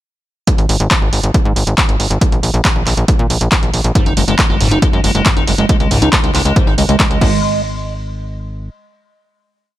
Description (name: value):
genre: uplifting trance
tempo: 138 BPM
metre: 4/4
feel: straight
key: unclear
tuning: A4 = 440 Hz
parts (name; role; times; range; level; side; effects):
- electronic kick drum; drums; 0.5-7.3 s; none; -14 LUFS; equal; overdrive
- punchy analog drum machine; drums; 0.5-7.3 s; crash cymbal, handclaps, hi-hat; -18 LUFS; equal; none
- tight sequencer bass; bass; 0.6-8.7 s; F#1 to A#2; -16 LUFS; equal; sidechain pumping
- liquid acid bass; arpeggios; 4.0-7.6 s; G#2 to D#4; -17 LUFS; equal; phaser, lush chorus, sidechain pumping, tape echo
room: little or no reverb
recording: none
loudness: -11 LUFS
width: side -14 dB against mid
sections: 0.5-7.4 drop; 7.4-9.8 final hit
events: drop 0.5-7.4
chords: 0.5 N.C.; 4.0 F#sus2; 5.7 C#5; 7.2 N.C.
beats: | 0.48 0.91 1.34 1.78 | 2.21 2.65 3.08 3.52 | 3.95 4.39 4.82 5.26 | 5.69 6.13 6.56 7.00 | 7.43 7.87 8.30